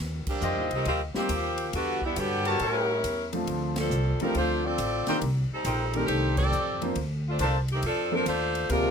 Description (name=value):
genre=jazz, big band swing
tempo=138 BPM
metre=4/4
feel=swing 66% on 8ths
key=Bb major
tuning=A4 = 442 Hz
part: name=upright bass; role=bass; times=0.0-8.9 s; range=A1 to A2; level=-30 LUFS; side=equal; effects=none
part: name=bright saxophone section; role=melody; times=0.3-8.9 s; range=D3 to D5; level=-28 LUFS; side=equal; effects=none
part: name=swinging big-band drum kit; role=drums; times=0.3-8.8 s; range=crash cymbal, hi-hat, kick drum, ride cymbal, snare drum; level=-37 LUFS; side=equal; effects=none
part: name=warm trumpet section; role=stabs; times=0.4-7.6 s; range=D4 to A5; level=-29 LUFS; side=left 1 dB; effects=none
part: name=clear concert grand piano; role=accompaniment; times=1.1-8.3 s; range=Eb3 to C5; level=-30 LUFS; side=equal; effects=none
part: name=clear trombone section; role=second line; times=8.7-8.9 s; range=C3 to Bb3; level=-25 LUFS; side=left 2 dB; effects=none
room=light reverb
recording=none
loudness=-25 LUFS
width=side -6 dB against mid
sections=0.0-8.9 A section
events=band accent 0.2, 3.7, 6.3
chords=0.0 Eb69; 1.7 Em11; 2.6 A7b9; 3.5 Dm7; 5.2 Cm7; 6.1 F13; 7.0 Bbmaj9